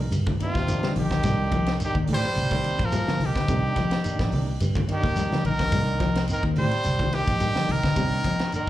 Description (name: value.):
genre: afrobeat.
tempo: 107 BPM.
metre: 4/4.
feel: swing 54% on 16ths.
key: C minor.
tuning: A4 = 438 Hz.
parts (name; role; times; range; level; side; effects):
bright trumpet; melody; 0.0-8.7 s; F4 to C5; -28 LUFS; equal; slapback echo.
bright trombone; second line; 0.0-8.7 s; C3 to G3; -32 LUFS; right 2 dB; slapback echo.
fingered electric bass; bass; 0.0-8.7 s; Bb1 to C3; -27 LUFS; equal; none.
tight funk drum kit; drums; 0.1-8.7 s; hi-hat, kick drum, ride cymbal, snare drum; -30 LUFS; equal; none.
congas; percussion; 0.1-8.4 s; none; -31 LUFS; right 1 dB; none.
shekere; percussion; 0.1-8.7 s; none; -32 LUFS; equal; none.
mellow electric guitar; arpeggios; 0.3-8.5 s; D3 to G3; -29 LUFS; left 4 dB; none.
combo organ; accompaniment; 0.4-8.7 s; Eb3 to F4; -34 LUFS; right 1 dB; slapback echo.
room: light reverb.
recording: live gig heard through the venue's PA, club reverb.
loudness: -22 LUFS.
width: side -14 dB against mid.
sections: 0.0-8.7 A section.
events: none.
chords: 0.0 Cm7.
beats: 0.12 0.68 | 1.24 1.80 2.36 2.92 | 3.48 4.04 4.60 5.16 | 5.72 6.29 6.85 7.41 | 7.97 8.53.